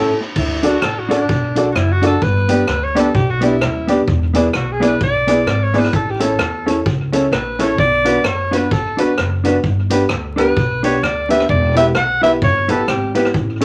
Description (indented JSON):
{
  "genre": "ska",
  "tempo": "129 BPM",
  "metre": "4/4",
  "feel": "swing 58% on 8ths",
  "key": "D major",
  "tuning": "A4 = 437 Hz",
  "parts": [
    { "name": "mellow electric guitar", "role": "accompaniment", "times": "0.0-13.6 s", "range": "B3 to B4", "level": "-23 LUFS", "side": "equal", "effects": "none" },
    { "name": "warm upright piano", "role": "stabs", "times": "0.0-13.6 s", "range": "B3 to D5", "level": "-21 LUFS", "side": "equal", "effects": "none" },
    { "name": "upright bass", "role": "bass", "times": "0.0-13.6 s", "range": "Eb1 to E2", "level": "-23 LUFS", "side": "equal", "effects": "none" },
    { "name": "warm alto saxophone", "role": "melody", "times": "0.4-13.1 s", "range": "D4 to F#5", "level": "-21 LUFS", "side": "equal", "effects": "none" },
    { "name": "vintage drum kit", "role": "drums", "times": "0.4-13.6 s", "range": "crash cymbal, hi-hat, kick drum, rim click", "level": "-24 LUFS", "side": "equal", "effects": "tape echo" }
  ],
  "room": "moderate studio reverb, RT60 0.6 s",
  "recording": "vinyl crackle",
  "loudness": "-16 LUFS",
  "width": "mono",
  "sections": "0.4-13.6 A section",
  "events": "band accent 0.0-0.4; alto saxophone solo 0.4-13.6",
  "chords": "0.4 D; 2.2 G; 4.1 E7; 5.9 A; 7.8 Bm; 9.6 G; 11.5 Em"
}